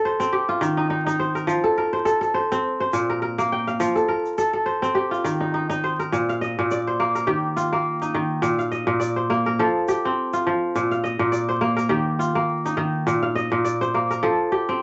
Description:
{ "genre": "west african traditional, West African string and xylophone music", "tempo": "104 BPM", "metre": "4/4", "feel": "swing 56% on 16ths", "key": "unclear", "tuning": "A4 = 439 Hz", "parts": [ { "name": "kora", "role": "arpeggios", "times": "0.0-14.8 s", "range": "Bb2 to G5", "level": "-23 LUFS", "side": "equal", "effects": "none" }, { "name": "tube shaker", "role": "percussion", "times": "0.2-14.2 s", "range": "none", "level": "-48 LUFS", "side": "equal", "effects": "none" } ], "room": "moderate studio ambience, RT60 0.5 s", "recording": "vinyl crackle, nothing above 7.9 kHz", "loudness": "-23 LUFS", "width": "mono", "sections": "0.0-6.1 A section; 6.1-14.8 B section", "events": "none", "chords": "0.3 Eb; 1.5 F; 2.6 Bb5; 3.8 F; 5.0 Eb; 6.1 Bb; 7.3 Eb; 8.4 Bb; 9.6 F; 10.7 Bb; 11.9 Eb; 13.1 Bb; 14.2 F", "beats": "0.33 0.91 | 1.49 2.07 2.65 3.22 | 3.80 4.38 4.96 5.54 | 6.12 6.69 7.27 7.85 | 8.43 9.01 9.59 10.17 | 10.75 11.33 11.90 12.48 | 13.06 13.64 14.22 14.80" }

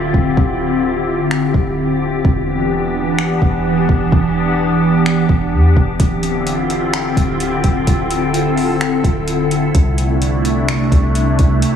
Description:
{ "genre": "hip hop, atmospheric cloud-rap", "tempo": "128 BPM", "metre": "4/4", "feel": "half-time", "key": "D dorian", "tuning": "A4 = 440 Hz", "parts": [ { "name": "glassy FM pad", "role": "sustained chords", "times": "0.0-11.8 s", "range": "C3 to A4", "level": "-15 LUFS", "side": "equal", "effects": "ensemble chorus, built-in reverb, sidechain pumping" }, { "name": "soft 808-style bass", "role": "bass", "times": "0.0-11.6 s", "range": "D1 to E2", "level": "-20 LUFS", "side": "equal", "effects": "none" }, { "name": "smooth R&B drum kit", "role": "drums", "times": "0.1-11.7 s", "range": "finger snaps, hi-hat, kick drum", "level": "-17 LUFS", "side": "equal", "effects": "none" } ], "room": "light reverb", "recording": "small room ambience", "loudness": "-13 LUFS", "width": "side -8 dB against mid", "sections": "0.0-11.8 A section", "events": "break 0.0-6.0", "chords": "0.0 Dm11; 2.2 Em7; 6.0 Dm11; 9.7 C69", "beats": "| 0.37 0.84 1.31 1.78 | 2.25 2.72 3.19 3.65 | 4.12 4.59 5.06 5.53 | 6.00 6.47 6.93 7.40 | 7.87 8.34 8.81 9.28 | 9.75 10.22 10.69 11.15 | 11.62" }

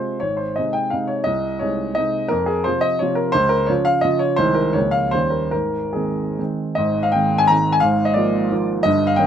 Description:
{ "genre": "classical, romantic triple-time dance for piano with dotted rhythms", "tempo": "134-188 BPM", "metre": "3/4", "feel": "rubato", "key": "Ab major", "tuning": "A4 = 444 Hz", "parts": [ { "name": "warm baby grand piano", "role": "solo", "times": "0.0-9.3 s", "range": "G1 to Bb5", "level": "-17 LUFS", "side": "equal", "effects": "none" } ], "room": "little or no reverb", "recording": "close, detailed microphones", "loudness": "-17 LUFS", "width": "side -9 dB against mid", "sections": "0.0-6.8 A section; 6.8-9.3 B section", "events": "none", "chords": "0.2 Ab; 1.3 Ab/C; 2.3 F5; 3.3 Dbmaj13; 4.4 Ab/C; 4.8 Bbm/Db; 5.1 Eb7; 5.5 Ab; 7.8 Bb7/Ab", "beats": "| 0.23 0.58 0.93 | 1.27 1.61 1.97 | 2.31 2.65 3.01 | 3.34 3.69 4.04 | 4.39 4.76 5.14 | 5.54 5.96 6.39 | 6.78 7.14 7.49 | 7.83 8.16 8.52 | 8.85 9.18" }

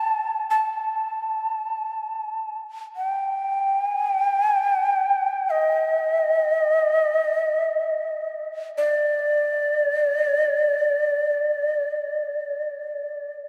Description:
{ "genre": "japanese traditional, Japanese chamber music", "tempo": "free time", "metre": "none", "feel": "none", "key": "unclear", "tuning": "A4 = 440 Hz", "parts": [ { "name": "breathy shakuhachi", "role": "solo", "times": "0.0-13.4 s", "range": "D5 to A5", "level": "-23 LUFS", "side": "equal", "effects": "none" } ], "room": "wet cathedral reverb, RT60 5.5 s", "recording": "in a vast, echoing space", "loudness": "-23 LUFS", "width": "mono", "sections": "0.0-13.5 A section", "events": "slowing down 5.7-13.5", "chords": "none", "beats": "free time" }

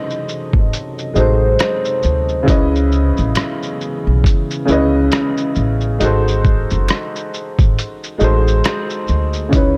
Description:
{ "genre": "lo-fi hip hop", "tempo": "68 BPM", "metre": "4/4", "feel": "swing 60% on 16ths", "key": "unclear", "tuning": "A4 = 440 Hz", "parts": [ { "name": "vibraphone with soft mallets", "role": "melody", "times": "0.0-2.4, 9.6-9.8 s", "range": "B#4 to D#5", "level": "-24 LUFS", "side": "equal", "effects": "analog delay" }, { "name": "warm upright piano", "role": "accompaniment", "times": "0.0-9.8 s", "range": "C#3 to D#5", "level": "-21 LUFS", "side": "equal", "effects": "none" }, { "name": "deep dark ambient pad", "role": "sustained chords", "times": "0.0-9.8 s", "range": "B#2 to D#5", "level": "-30 LUFS", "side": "equal", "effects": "chorus, built-in reverb" }, { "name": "lo-fi sampler-style drum kit", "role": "drums", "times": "0.1-9.8 s", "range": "hi-hat, kick drum, rim click, shaker", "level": "-20 LUFS", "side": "equal", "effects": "vintage 12-bit sampler grit" }, { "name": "upright bass", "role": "bass", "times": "0.5-9.8 s", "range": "F#1 to D2", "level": "-19 LUFS", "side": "equal", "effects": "none" }, { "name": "finger snaps", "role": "percussion", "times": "1.6-8.9 s", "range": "none", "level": "-36 LUFS", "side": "equal", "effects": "none" } ], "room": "light reverb, small room ambience", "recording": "dark, warm production", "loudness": "-16 LUFS", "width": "mono", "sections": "0.0-9.8 A section", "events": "none", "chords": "0.0 G#7b9; 2.5 C#m9; 6.0 G#7b9", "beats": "0.71 1.59 | 2.48 3.36 4.24 5.12 | 6.01 6.89 7.77 8.65 | 9.54" }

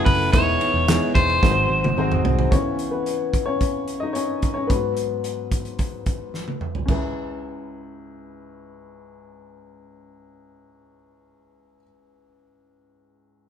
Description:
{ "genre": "piano-driven pop", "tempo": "110 BPM", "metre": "4/4", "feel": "straight", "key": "C# minor", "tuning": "A4 = 439 Hz", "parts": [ { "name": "electric guitar at the edge of break-up", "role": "melody", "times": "0.0-2.2 s", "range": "B4 to C#5", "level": "-21 LUFS", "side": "equal", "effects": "none" }, { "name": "warm upright piano", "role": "accompaniment", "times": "0.0-13.5 s", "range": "C#2 to D#5", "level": "-26 LUFS", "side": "left 4 dB", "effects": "none" }, { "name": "fingerpicked plugged-in steel-string acoustic guitar", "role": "riff", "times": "0.0-2.5 s", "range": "G#2 to A4", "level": "-28 LUFS", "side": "right 6 dB", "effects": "none" }, { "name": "vintage muted picked electric bass", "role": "bass", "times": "0.1-2.5 s", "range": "E1 to B#1", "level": "-25 LUFS", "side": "equal", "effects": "none" }, { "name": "loose indie drum kit", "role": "drums", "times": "0.1-7.0 s", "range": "handclaps, hi-hat, kick drum, ride cymbal, snare drum, splash cymbal, toms", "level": "-22 LUFS", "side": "right 1 dB", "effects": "none" } ], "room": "moderate large studio reverb, RT60 1.2 s", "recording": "band playing live in one room", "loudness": "-19 LUFS", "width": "side -8 dB against mid", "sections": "0.0-2.5 A section; 2.5-6.9 B section; 6.9-11.3 C section", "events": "drum fill 1.4-2.5, 6.3-6.9; upright piano solo 2.5-6.9", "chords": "0.3 Emaj7; 1.4 G#7; 2.5 C#m7; 4.7 G#m7; 6.9 C#m7", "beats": "| 0.33 0.88 1.42 1.97 | 2.52 3.06 3.61 4.15 | 4.70 5.24 5.79 6.34 | 6.88 7.43 7.97 8.52 | 9.07 9.61 10.16 10.71" }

